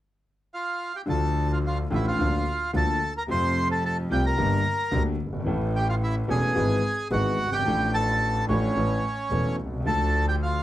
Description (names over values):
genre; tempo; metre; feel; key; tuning
tango; 109 BPM; 4/4; rubato; D minor; A4 = 441 Hz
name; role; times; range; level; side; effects
bandoneon; melody; 0.5-10.6 s; C#4 to C6; -27 LUFS; right 1 dB; none
warm concert grand piano; accompaniment; 1.1-10.6 s; E1 to A4; -27 LUFS; left 1 dB; none
clear double bass; bass; 1.1-10.6 s; E1 to F2; -27 LUFS; right 1 dB; none
room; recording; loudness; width
moderate club ambience, RT60 0.5 s; none; -23 LUFS; side -14 dB against mid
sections
0.0-1.1 A section; 1.1-10.6 B section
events
none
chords
0.0 Fsus2; 1.1 Dm; 2.2 Bb/D; 3.3 F; 4.4 Gm; 5.5 A; 6.6 E/G#; 7.7 Dm/A; 8.8 A; 9.9 Dm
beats
0.53 | 1.08 1.64 2.19 2.74 | 3.29 3.84 4.38 4.92 | 5.47 6.01 6.56 7.11 | 7.66 8.21 8.76 9.32 | 9.88 10.43